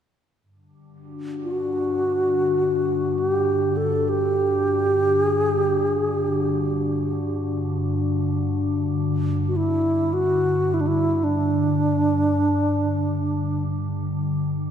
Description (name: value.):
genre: world meditative, free-time meditation music.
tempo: free time.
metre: none.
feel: none.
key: unclear.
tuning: A4 = 440 Hz.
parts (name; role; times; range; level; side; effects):
glassy FM pad; drone; 1.0-14.7 s; G2 to D3; -25 LUFS; left 1 dB; ensemble chorus, built-in reverb.
glass harmonica; texture; 0.9-9.1 s; D4 to F#4; -28 LUFS; left 3 dB; none.
bright reedy wooden-headed alto flute; melody; 1.4-13.6 s; D4 to A4; -21 LUFS; right 1 dB; diffuse ambient delay.
room: moderate lush hall reverb, RT60 2.5 s.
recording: dark, warm production.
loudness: -20 LUFS.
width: side -8 dB against mid.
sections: 0.4-14.7 A section.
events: none.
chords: none.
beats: free time.